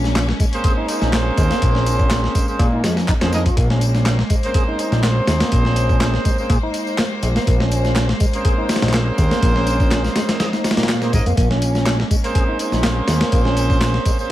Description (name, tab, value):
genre	breakbeat, breaks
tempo	123 BPM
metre	4/4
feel	swing 54% on 16ths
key	Bb minor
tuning	A4 = 444 Hz
part	clear studio string section	sustained chords	0.0-14.3 s	Ab3 to C5	-27 LUFS	left 2 dB	sidechain pumping
part	tonewheel organ	riff	0.0-14.1 s	Ab3 to Ab4	-25 LUFS	equal	slow rotary speaker, digital delay
part	fat analog bass	bass	0.0-14.0 s	F1 to Bb2	-19 LUFS	equal	none
part	breakbeat sampler-style drum kit	drums	0.0-14.2 s	hi-hat, kick drum, snare drum	-19 LUFS	equal	none
part	electronic tambourine and handclaps	drums	0.0-14.3 s	none	-31 LUFS	left 1 dB	none
part	mellow horn section	stabs	0.5-14.3 s	Bb3 to Eb5	-23 LUFS	right 2 dB	digital delay
part	swell	sound effects	10.7-11.4 s	none	-33 LUFS	right 5 dB	none
room	little or no reverb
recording	vinyl crackle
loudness	-15 LUFS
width	side -14 dB against mid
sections	0.0-14.3 A section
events	none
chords	0.0 Bbm9